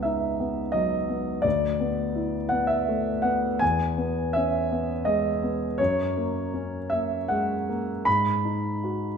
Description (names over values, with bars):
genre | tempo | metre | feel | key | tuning
classical, impressionist solo piano | 82 BPM | 3/4 | uneven beats, rubato | E major | A4 = 440 Hz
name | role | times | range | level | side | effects
warm concert grand piano | solo | 0.0-9.2 s | C#2 to B5 | -23 LUFS | equal | none
room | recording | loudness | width
wet recital hall reverb, RT60 1.6 s | minimal, uncompressed stereo recording | -23 LUFS | side -6 dB against mid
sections
0.0-9.2 A section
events
none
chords
0.0 C#m11; 1.4 Dsus2; 3.6 E6; 5.8 F#add9; 8.1 G#m7